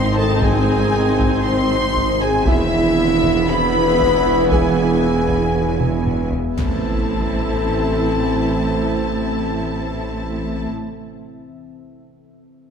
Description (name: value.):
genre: cinematic, hybrid orchestral and electronic film score.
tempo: 117 BPM.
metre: 4/4.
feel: straight.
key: A harmonic minor.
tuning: A4 = 441 Hz.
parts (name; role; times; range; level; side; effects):
rich chamber violin section; melody; 0.0-10.7 s; E5 to B#5; -27 LUFS; left 1 dB; none.
warm symphonic violin section; second line; 0.0-10.7 s; E5 to B#5; -28 LUFS; left 2 dB; none.
rich studio viola section; accompaniment; 0.0-10.7 s; B3 to E4; -26 LUFS; equal; none.
bright trombone section; sustained chords; 0.0-10.7 s; D#3 to B#3; -27 LUFS; right 2 dB; none.
dark French horn section; sustained chords; 0.0-10.7 s; E4 to B#4; -21 LUFS; left 2 dB; none.
deep dark ambient pad; sustained chords; 0.0-10.7 s; D#3 to E5; -27 LUFS; left 1 dB; chorus, built-in reverb.
clear symphonic double bass section; bass; 0.0-10.7 s; E1 to A1; -28 LUFS; right 4 dB; none.
punchy sub bass; bass; 0.0-10.7 s; E1 to A1; -29 LUFS; equal; none.
rich symphonic cello section; bass; 0.0-10.7 s; E2 to A2; -26 LUFS; right 3 dB; none.
warm tuba; bass; 0.0-10.7 s; E1 to A1; -26 LUFS; right 3 dB; none.
taiko ensemble; drums; 0.4-6.7 s; none; -24 LUFS; equal; none.
impact; sound effects; 6.6-8.6 s; none; -29 LUFS; equal; none.
room: wet concert hall reverb, RT60 2.3 s.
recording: none.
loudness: -16 LUFS.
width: side -6 dB against mid.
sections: 0.0-6.6 A section; 6.6-10.7 B section.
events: drum fill 5.8-6.6; impact 6.6-8.6.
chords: 0.0 G#; 2.5 E; 6.6 Am.